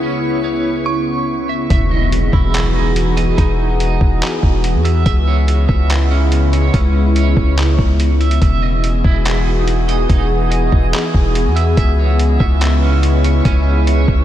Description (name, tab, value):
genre	hip hop, atmospheric cloud-rap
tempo	143 BPM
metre	4/4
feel	half-time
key	E major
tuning	A4 = 440 Hz
part	warbly tape-like pad	sustained chords	0.0-14.2 s	C#2 to G#4	-19 LUFS	left 1 dB	chorus, built-in reverb, sidechain pumping
part	electric guitar at the edge of break-up	arpeggios	0.0-14.2 s	C#4 to E5	-24 LUFS	right 6 dB	tremolo, tape echo
part	drifting glass-harmonics texture	texture	0.0-1.7, 8.8-14.2 s	E4 to D#6	-29 LUFS	equal	chorus, built-in reverb
part	dark detuned synth bell	melody	0.9-1.3 s	C#6	-27 LUFS	right 4 dB	chorus, tape echo
part	long sustained 808-style bass	bass	1.7-14.2 s	E1 to E2	-14 LUFS	equal	none
part	lo-fi sampler-style drum kit	drums	1.7-14.2 s	handclaps, hi-hat, kick drum	-18 LUFS	equal	none
part	impact	sound effects	1.7-3.4 s	none	-25 LUFS	equal	none
room	light reverb, digital ambience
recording	none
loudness	-12 LUFS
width	side -12 dB against mid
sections	0.0-1.7 A section; 1.7-14.2 B section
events	impact 1.7-3.4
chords	0.0 C#m7; 1.7 Emaj7; 5.1 C#m7; 8.4 Emaj7; 11.8 C#m7